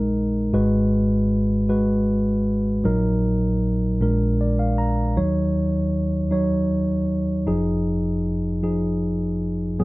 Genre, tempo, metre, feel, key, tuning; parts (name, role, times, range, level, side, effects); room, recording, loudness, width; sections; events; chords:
folk; 52 BPM (dotted quarters); 6/8; straight; Eb minor; A4 = 440 Hz
mellow tine electric piano; solo; 0.0-9.8 s; F1 to Bb5; -19 LUFS; equal
light reverb; close, detailed microphones; -19 LUFS; side -21 dB against mid
0.0-5.2 A section; 5.2-9.8 A section
0.0 Bb7sus4; 0.5 Abm7; 2.8 Ebm/Bb; 4.0 Bb7; 5.2 Ebm7; 7.5 Fm7